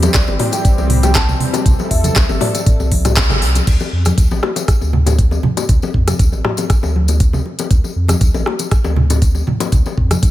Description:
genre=afro house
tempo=119 BPM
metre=4/4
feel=straight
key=D minor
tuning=A4 = 440 Hz
part: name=warm analog pad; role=sustained chords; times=0.0-3.7 s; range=E3 to A4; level=-24 LUFS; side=equal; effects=chorus, tremolo, sidechain pumping
part: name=warm sub bass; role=bass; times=0.0-10.3 s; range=G1 to F2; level=-16 LUFS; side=equal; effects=sidechain pumping
part: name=afro-pop drum kit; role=drums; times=0.0-10.3 s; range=crash cymbal, handclaps, hi-hat, rim click, toms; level=-20 LUFS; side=equal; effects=small room ambience
part: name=bongos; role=percussion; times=0.0-10.2 s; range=none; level=-22 LUFS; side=left 6 dB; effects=none
part: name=congas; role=percussion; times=0.0-10.2 s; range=none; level=-22 LUFS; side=right 2 dB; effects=none
part: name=tambourine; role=percussion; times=0.0-10.3 s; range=none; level=-30 LUFS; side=left 5 dB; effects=none
part: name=kalimba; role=melody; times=0.1-2.6 s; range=D5 to A5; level=-25 LUFS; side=right 1 dB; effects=tape echo
part: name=electronic kick drum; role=drums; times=0.1-10.3 s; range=none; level=-14 LUFS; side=equal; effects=small room ambience
room=small room ambience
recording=none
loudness=-12 LUFS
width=side -14 dB against mid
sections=0.0-3.7 A section; 3.7-10.3 B section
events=drop 0.0-3.7; band accent 3.2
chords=0.0 C; 3.7 Dm

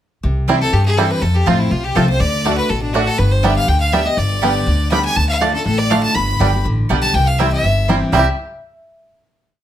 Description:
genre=bluegrass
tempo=243 BPM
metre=4/4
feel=straight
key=C major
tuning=A4 = 440 Hz
part: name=picked steel-string acoustic guitar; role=accompaniment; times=0.2-8.2 s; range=F2 to G4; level=-20 LUFS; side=left 2 dB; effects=none
part: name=upright bass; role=bass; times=0.2-8.2 s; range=G1 to G2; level=-18 LUFS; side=equal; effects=none
part: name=bluegrass banjo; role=arpeggios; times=0.5-8.3 s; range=G3 to G4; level=-20 LUFS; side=right 3 dB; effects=none
part: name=mandolin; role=stabs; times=0.5-8.2 s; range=A3 to A5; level=-22 LUFS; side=right 7 dB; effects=none
part: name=clear fiddle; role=melody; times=0.6-8.2 s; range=D4 to B5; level=-20 LUFS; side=equal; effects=none
part: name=clear fiddle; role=second line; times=0.6-8.2 s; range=D4 to B5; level=-27 LUFS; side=left 6 dB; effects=none
room=light reverb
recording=none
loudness=-13 LUFS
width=side -11 dB against mid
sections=0.2-8.1 A section; 8.1-9.1 final chord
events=none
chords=0.2 C; 1.2 F; 2.2 D; 3.2 G; 5.2 Dm; 6.2 G; 7.1 C

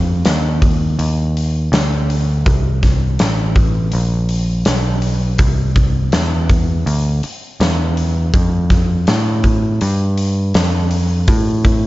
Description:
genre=blues rock power trio and southern rock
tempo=82 BPM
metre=4/4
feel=straight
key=unclear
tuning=A4 = 440 Hz
part: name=overdriven picked electric bass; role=bass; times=0.0-11.9 s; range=A1 to A2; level=-16 LUFS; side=equal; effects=none
part: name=big rock drum kit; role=drums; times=0.2-11.8 s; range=hi-hat, kick drum, snare drum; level=-17 LUFS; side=equal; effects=none
room=little or no reverb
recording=nothing above 7.6 kHz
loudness=-13 LUFS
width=side -17 dB against mid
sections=0.0-11.9 A section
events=none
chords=none

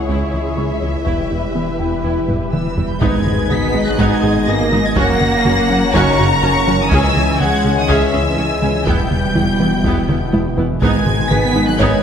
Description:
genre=cinematic, hybrid orchestral and electronic film score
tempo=123 BPM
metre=4/4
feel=straight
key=G# minor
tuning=A4 = 442 Hz
part: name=warm studio violin section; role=second line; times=0.0-12.0 s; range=B4 to A#5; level=-23 LUFS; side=left 2 dB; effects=none
part: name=bright studio viola section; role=accompaniment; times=0.0-12.0 s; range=B3 to G#4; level=-24 LUFS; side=right 2 dB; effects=none
part: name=analog string pad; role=sustained chords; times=0.0-12.0 s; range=B2 to D#5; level=-24 LUFS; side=left 1 dB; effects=ensemble chorus
part: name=clear French horn section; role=sustained chords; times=0.0-12.0 s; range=B2 to E4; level=-23 LUFS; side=left 4 dB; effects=none
part: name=saturated sub bass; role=bass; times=0.0-12.0 s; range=E1 to C#2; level=-25 LUFS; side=equal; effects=none
part: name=dark grand piano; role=texture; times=0.0-12.0 s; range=D#4 to G#6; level=-28 LUFS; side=left 2 dB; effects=ping-pong delay
part: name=soft round pluck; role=arpeggios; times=0.1-11.9 s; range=C#3 to G#4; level=-26 LUFS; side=right 3 dB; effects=none
part: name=rubbery square bass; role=riff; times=0.1-11.9 s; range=C#2 to G#3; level=-22 LUFS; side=left 1 dB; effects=none
part: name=rich symphonic cello section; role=bass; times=0.1-12.0 s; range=C#2 to B3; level=-22 LUFS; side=right 4 dB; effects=none
part: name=solo taiko drums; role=drums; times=1.1-12.0 s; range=none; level=-22 LUFS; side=equal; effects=none
part: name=rich symphonic violin section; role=melody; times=2.5-12.0 s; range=C#6 to B6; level=-22 LUFS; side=left 1 dB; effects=none
part: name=rich symphonic double bass section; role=bass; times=3.0-11.9 s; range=F#1 to E2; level=-24 LUFS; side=right 3 dB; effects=none
part: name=sub drop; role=sound effects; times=3.0-5.0 s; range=none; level=-27 LUFS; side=equal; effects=none
room=wet scoring stage reverb, RT60 1.6 s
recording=none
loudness=-13 LUFS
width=side -8 dB against mid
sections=0.0-3.0 A section; 3.0-12.0 B section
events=drum fill 2.3-3.0, 10.1-10.8; impact 3.0-5.0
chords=0.0 C#m; 1.1 Em; 3.0 G#m; 5.0 F#; 6.9 C#m; 8.9 Em; 10.8 G#m

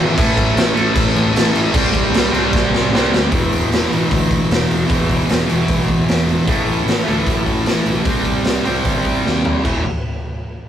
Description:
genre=garage rock duo or trio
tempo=152 BPM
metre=4/4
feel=straight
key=unclear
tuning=A4 = 440 Hz
part: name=thick fuzz guitar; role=riff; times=0.0-9.8 s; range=E2 to C4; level=-17 LUFS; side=equal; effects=distortion
part: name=fuzz fingered electric bass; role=bass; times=0.0-9.8 s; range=E1 to F#2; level=-23 LUFS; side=equal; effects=overdrive
part: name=raw garage drum kit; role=drums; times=0.2-9.7 s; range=crash cymbal, hi-hat, kick drum, snare drum, toms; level=-18 LUFS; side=equal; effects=none
room=moderate studio reverb, RT60 0.5 s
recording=rough rehearsal-room recording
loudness=-14 LUFS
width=side -10 dB against mid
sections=0.0-3.3 A section; 3.3-9.6 B section; 9.6-10.7 C section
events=drum fill 2.5-3.3, 9.2-9.6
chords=0.2 A5; 1.7 C5; 3.3 E5; 6.5 A5; 8.1 C5; 9.6 E5

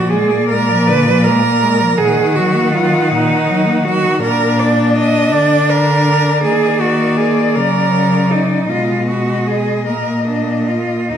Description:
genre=classical, lyrical piece for cello ensemble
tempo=54 BPM (dotted quarters)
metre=6/8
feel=rubato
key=Eb minor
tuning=A4 = 442 Hz
part: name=rich cello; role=melody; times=0.0-11.2 s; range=D5 to Gb5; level=-21 LUFS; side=left 8 dB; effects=none
part: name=clear cello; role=second line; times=0.0-11.2 s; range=D4 to Eb5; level=-16 LUFS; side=right 5 dB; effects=none
part: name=rich cello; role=accompaniment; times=0.0-11.2 s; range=Bb2 to D4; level=-18 LUFS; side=left 2 dB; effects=none
part: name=rich cello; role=bass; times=0.0-11.2 s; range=Eb2 to Eb3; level=-18 LUFS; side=equal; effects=none
room=wet recital hall reverb, RT60 1.3 s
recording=none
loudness=-12 LUFS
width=side -9 dB against mid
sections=0.0-11.2 A section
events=none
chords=0.0 Bb7; 2.0 Ebm/Bb; 4.2 Bb; 6.4 Ebm; 8.7 Abm/Cb; 9.9 Bbadd11

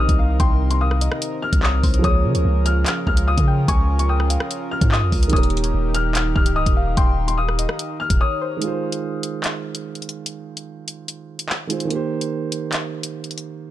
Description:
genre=hip hop, drill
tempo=146 BPM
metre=4/4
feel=half-time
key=F minor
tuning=A4 = 440 Hz
part: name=warm upright piano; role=melody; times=0.0-8.4 s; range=C6 to F6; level=-26 LUFS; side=left 5 dB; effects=low-pass filter, digital delay
part: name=soft round pluck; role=second line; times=0.0-8.6 s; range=C5 to Ab5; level=-31 LUFS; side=left 4 dB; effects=chorus, digital delay
part: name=dark concert grand piano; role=accompaniment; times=0.0-13.7 s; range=Eb3 to Db5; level=-28 LUFS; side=right 6 dB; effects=low-pass filter
part: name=warm analog pad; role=sustained chords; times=0.0-8.6 s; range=C3 to Bb4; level=-29 LUFS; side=equal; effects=chorus
part: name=long sustained 808-style bass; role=bass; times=0.0-8.2 s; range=Db1 to Db3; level=-20 LUFS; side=equal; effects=none
part: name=drill drum kit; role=drums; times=0.1-13.4 s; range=handclaps, hi-hat, kick drum, rim click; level=-21 LUFS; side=equal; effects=none
room=little or no reverb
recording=none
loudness=-18 LUFS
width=side -13 dB against mid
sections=0.0-8.6 A section; 8.6-13.7 B section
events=drums muted 8.2-8.6; break 8.6-13.7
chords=0.0 Cm7; 2.0 Db6; 5.3 Eb; 8.6 Fm7; 11.9 Cm7

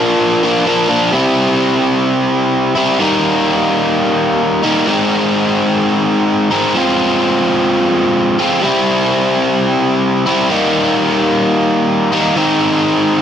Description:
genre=rock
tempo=128 BPM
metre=4/4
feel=straight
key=unclear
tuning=A4 = 441 Hz
part: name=biting overdriven guitar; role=solo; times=0.0-13.2 s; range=Ab2 to F4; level=-11 LUFS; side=equal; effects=none
room=moderate studio reverb, RT60 0.7 s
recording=none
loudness=-11 LUFS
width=side -8 dB against mid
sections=0.0-1.1 A section; 1.1-13.2 B section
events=none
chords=0.0 Bb; 1.1 C; 3.0 Eb; 4.9 Ab; 6.7 Fm; 8.6 C; 10.5 Eb; 12.4 Ab

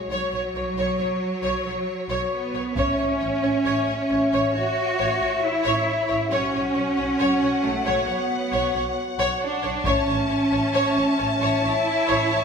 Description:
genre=cinematic, epic orchestral film score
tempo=68 BPM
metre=4/4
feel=straight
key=A major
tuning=A4 = 441 Hz
part: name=warm symphonic violin section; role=melody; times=0.0-12.4 s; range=C#5 to A5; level=-30 LUFS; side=left 4 dB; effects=none
part: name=dark French horn section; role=sustained chords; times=0.0-12.4 s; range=F#4 to E5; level=-29 LUFS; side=left 3 dB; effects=none
part: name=clear symphonic cello section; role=bass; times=0.0-12.4 s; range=F#3 to F#4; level=-24 LUFS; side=right 2 dB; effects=none
part: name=rich studio violin section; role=second line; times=0.1-12.4 s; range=C#5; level=-29 LUFS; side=left 2 dB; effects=none
part: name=rich symphonic viola section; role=accompaniment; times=0.1-12.4 s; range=C#5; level=-28 LUFS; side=equal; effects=none
part: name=rich symphonic double bass section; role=bass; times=0.1-12.4 s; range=A1 to B1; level=-32 LUFS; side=right 2 dB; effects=none
part: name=taiko ensemble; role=drums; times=2.8-4.5, 9.8-11.6 s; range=none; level=-31 LUFS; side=equal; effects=none
room=wet recital hall reverb, RT60 1.8 s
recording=recorded in a church or concert hall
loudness=-20 LUFS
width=side -6 dB against mid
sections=0.0-12.4 A section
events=none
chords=0.0 Bsus2; 2.8 A; 6.3 Bsus2; 9.9 A

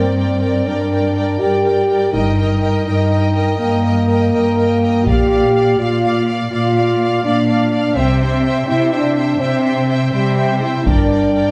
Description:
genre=cinematic, epic orchestral film score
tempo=82 BPM (dotted quarters)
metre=12/8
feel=straight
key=G minor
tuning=A4 = 441 Hz
part: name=clear symphonic violin section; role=melody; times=0.0-11.5 s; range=F5 to G5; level=-30 LUFS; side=equal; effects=none
part: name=clear symphonic violin section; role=second line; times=0.0-11.5 s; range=D5 to F5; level=-27 LUFS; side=equal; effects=none
part: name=clear symphonic viola section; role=accompaniment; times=0.0-11.5 s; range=Bb4 to D5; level=-26 LUFS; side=equal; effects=none
part: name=mellow French horn section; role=sustained chords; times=0.0-11.5 s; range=G3 to G4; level=-19 LUFS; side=equal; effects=none
part: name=rich symphonic cello section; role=bass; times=0.0-11.5 s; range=G2 to C3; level=-21 LUFS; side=equal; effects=none
part: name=clear symphonic double bass section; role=bass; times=2.1-11.3 s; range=G1 to C2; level=-24 LUFS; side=equal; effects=none
part: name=taiko ensemble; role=drums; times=5.1-6.0, 10.9-11.5 s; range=none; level=-20 LUFS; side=equal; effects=none
room=moderate scoring stage reverb, RT60 1.8 s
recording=dark, warm production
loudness=-16 LUFS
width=mono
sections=0.0-11.5 A section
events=none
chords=0.0 Gm; 2.1 Eb/G; 5.1 Bb; 8.0 C; 10.9 Gm

